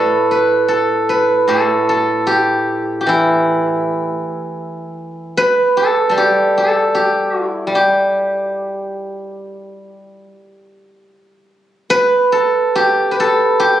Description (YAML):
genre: chinese traditional, Chinese solo plucked strings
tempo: 65-81 BPM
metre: 4/4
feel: rubato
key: G gong mode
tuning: A4 = 440 Hz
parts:
  - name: steel-string zither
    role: solo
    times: 0.0-13.8 s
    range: A2 to D5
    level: -13 LUFS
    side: equal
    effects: none
room: light reverb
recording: recorded on a phone in the room, club reverb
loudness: -13 LUFS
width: side -12 dB against mid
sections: 0.0-11.1 A section; 11.1-13.8 B section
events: none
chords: none